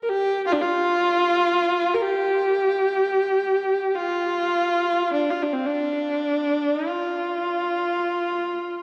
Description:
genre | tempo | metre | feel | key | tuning
world meditative, free-time meditation music | free time | none | none | unclear | A4 = 440 Hz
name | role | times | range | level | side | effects
warm viola | solo | 0.0-8.8 s | C4 to Bb4 | -23 LUFS | equal | delay
room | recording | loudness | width
wet church reverb, RT60 2.7 s | dark, warm production | -23 LUFS | mono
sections
0.0-8.8 A section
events
none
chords
none

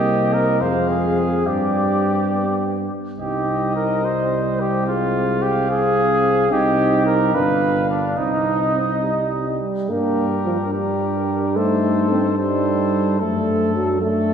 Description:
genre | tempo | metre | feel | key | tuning
classical, brass quintet | 72 BPM (dotted quarters) | 6/8 | rubato | C minor, G minor from 9.9 s | A4 = 440 Hz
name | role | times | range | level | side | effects
warm cornet | melody | 0.0-14.3 s | A4 to F5 | -25 LUFS | left 3 dB | none
warm trumpet | second line | 0.0-14.3 s | D4 to C5 | -22 LUFS | right 1 dB | none
mellow French horn | accompaniment | 0.0-14.3 s | B3 to Eb4 | -27 LUFS | left 2 dB | none
warm euphonium | accompaniment | 0.0-14.3 s | F3 to Eb4 | -24 LUFS | right 1 dB | none
mellow tuba | bass | 0.0-14.3 s | G1 to G2 | -23 LUFS | right 2 dB | none
room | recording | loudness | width
wet church reverb, RT60 2.8 s | heard from further back in the room | -17 LUFS | side -7 dB against mid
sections
0.0-9.9 A section; 9.9-14.3 B section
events
none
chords
0.0 Cm; 0.6 Fm; 1.5 Gsus4; 2.3 G; 3.2 Cm; 4.9 Fm/C; 6.5 Cm; 7.3 G7; 8.2 Cm; 9.9 Gm; 11.6 Am7b5/G; 13.2 D/F#

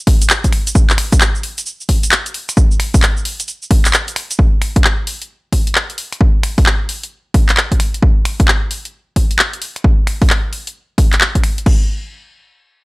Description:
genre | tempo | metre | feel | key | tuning
UK garage | 132 BPM | 4/4 | swing 64% on 16ths | none | none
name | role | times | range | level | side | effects
electronic kick drum | drums | 0.1-11.8 s | none | -12 LUFS | equal | none
house drum kit | drums | 0.1-11.8 s | cabasa, crash cymbal, finger snaps, handclaps, hi-hat | -16 LUFS | equal | none
room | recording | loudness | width
little or no reverb | dry, gritty hardware recording | -12 LUFS | side -23 dB against mid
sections
0.0-4.4 A section; 4.4-11.7 B section; 11.7-12.8 C section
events
drop 0.0-4.4; break 3.9-4.4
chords
none

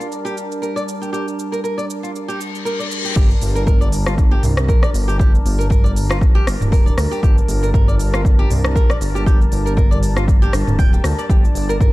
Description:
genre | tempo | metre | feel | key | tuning
afro house | 118 BPM | 4/4 | swing 55% on 16ths | G minor | A4 = 440 Hz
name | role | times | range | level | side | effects
warm analog pad | sustained chords | 0.0-11.9 s | G3 to A5 | -26 LUFS | equal | chorus, sidechain pumping
flamenco guitar | arpeggios | 0.0-11.9 s | F4 to G5 | -26 LUFS | equal | sidechain pumping, ping-pong delay
deep house drum kit | drums | 0.0-11.9 s | crash cymbal, hi-hat, rim click, shaker, toms | -24 LUFS | equal | none
reverse cymbal | sound effects | 2.4-3.2 s | none | -26 LUFS | left 6 dB | none
dark detuned saw bass | bass | 3.2-11.9 s | D1 to D2 | -19 LUFS | equal | sidechain pumping
electronic kick drum | drums | 3.2-11.9 s | none | -14 LUFS | equal | none
room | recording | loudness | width
little or no reverb | dark, warm production | -14 LUFS | side -18 dB against mid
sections
0.0-3.2 A section; 3.2-11.9 B section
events
reverse cymbal 2.4-3.2; drop 3.2-11.9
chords
0.0 Gmadd9

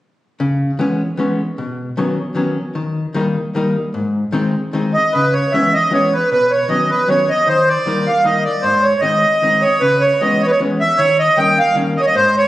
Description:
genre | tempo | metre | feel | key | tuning
musette waltz | 153 BPM | 3/4 | straight | C# minor | A4 = 442 Hz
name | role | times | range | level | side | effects
archtop guitar, miked and amplified | accompaniment | 0.4-12.4 s | G#2 to D#4 | -18 LUFS | left 1 dB | none
accordion | melody | 4.9-12.5 s | B4 to G5 | -13 LUFS | right 1 dB | none
room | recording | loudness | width
wet recital hall reverb, RT60 1.4 s | recorded on a phone in the room, studio reverb, compression | -13 LUFS | side -15 dB against mid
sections
0.4-5.1 A section; 5.1-12.5 B section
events
none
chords
0.4 C#m7; 1.6 Badd9; 2.8 D#; 3.9 G#; 5.1 C#m7; 6.3 Badd9; 7.5 D#; 8.6 G#; 9.8 C#m7; 11.0 D#7

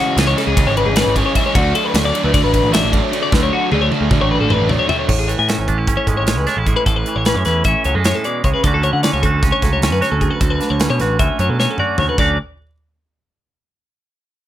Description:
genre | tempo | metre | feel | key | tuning
math rock and midwest emo | 305 BPM (eighths) | 9/8 | straight | D lydian | A4 = 436 Hz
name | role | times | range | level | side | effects
twelve-string electric guitar | arpeggios | 0.0-12.4 s | F#4 to G#5 | -19 LUFS | left 5 dB | none
biting overdriven guitar | riff | 0.0-5.1 s | C#3 to D4 | -19 LUFS | right 2 dB | none
growling picked electric bass | bass | 0.2-12.4 s | G#1 to D3 | -19 LUFS | equal | overdrive
modern studio drum kit | drums | 0.2-12.3 s | crash cymbal, hi-hat, kick drum, ride cymbal, snare drum, toms | -19 LUFS | equal | none
twangy electric guitar | accompaniment | 5.1-12.4 s | D2 to F#4 | -21 LUFS | right 6 dB | warbly pitch drift
room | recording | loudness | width
little or no reverb | none | -14 LUFS | side -12 dB against mid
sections
0.0-5.1 A section; 5.1-12.2 B section; 12.2-14.0 C section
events
drum fill 3.3-5.1, 11.6-12.2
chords
0.0 C#m7; 1.5 D6; 3.3 Dmaj7; 5.1 Amaj7; 8.6 Dmaj7; 12.2 D

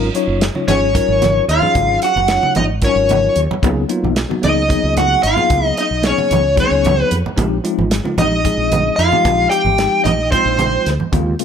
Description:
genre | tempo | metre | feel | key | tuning
electric jazz fusion | 224 BPM (eighths) | 7/8 | straight | unclear | A4 = 440 Hz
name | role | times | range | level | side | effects
bell-like tine electric piano | accompaniment | 0.0-11.4 s | C#3 to C#5 | -21 LUFS | left 3 dB | medium stereo tremolo
mellow fretless electric bass | bass | 0.0-11.3 s | F#1 to E#2 | -20 LUFS | right 1 dB | none
damped 70s drum kit | drums | 0.1-11.4 s | hi-hat, kick drum, snare drum | -21 LUFS | right 1 dB | none
congas | percussion | 0.6-11.3 s | none | -21 LUFS | right 4 dB | none
smooth overdriven lead guitar | melody | 0.7-10.9 s | B#4 to G5 | -16 LUFS | left 1 dB | slapback echo
vintage hollow-body jazz guitar | second line | 0.7-10.9 s | B#3 to G4 | -22 LUFS | left 1 dB | none
room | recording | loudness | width
light reverb | none | -13 LUFS | side -8 dB against mid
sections
0.0-11.4 A section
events
none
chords
0.0 G#13sus4; 3.6 C#13sus4; 7.4 A#13sus4

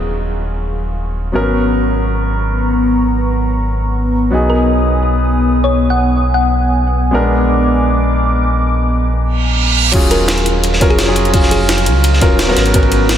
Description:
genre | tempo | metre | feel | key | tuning
liquid drum and bass | 171 BPM | 4/4 | straight | Eb minor | A4 = 440 Hz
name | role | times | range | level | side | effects
warm concert grand piano | accompaniment | 0.0-13.2 s | Gb3 to Bb4 | -17 LUFS | equal | vintage 12-bit sampler grit, analog delay
warm analog pad | sustained chords | 0.0-9.9 s | Cb4 to D#6 | -19 LUFS | left 1 dB | chorus
sub bass with octave | bass | 0.0-13.2 s | Eb1 to Db2 | -16 LUFS | equal | none
sub drop and reverse cymbal | sound effects | 0.1, 9.3-9.9 s | none | -21 LUFS | right 6 dB | none
thumb-piano-like synth pluck | melody | 4.5-6.7, 10.1-11.8 s | Ab4 to F#5 | -22 LUFS | left 1 dB | chorus, analog delay
crunchy breakbeat drum kit | drums | 9.9-13.2 s | hi-hat, ride cymbal, snare drum | -21 LUFS | equal | high-pass filter on cymbals, high-pass filter on hats, high-pass filter on snare, high-pass filter on room
electronic kick drum | drums | 9.9-12.8 s | none | -14 LUFS | equal | none
jungle sampler-style drum kit | drums | 9.9-13.2 s | crash cymbal, hi-hat, snare drum | -21 LUFS | left 1 dB | none
room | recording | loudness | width
moderate cathedral reverb, RT60 6.1 s | dreamy mix soaked in reverb | -11 LUFS | side -10 dB against mid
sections
0.0-9.9 A section; 9.9-13.2 B section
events
filter sweep on analog synth pad 0.0-9.9; reverse cymbal 9.3-9.9; drop 9.9-13.2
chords
0.0 Ebm11; 1.3 Abm11; 4.3 B6; 7.1 Bb7b9; 9.9 Ebm11; 12.6 Abm11

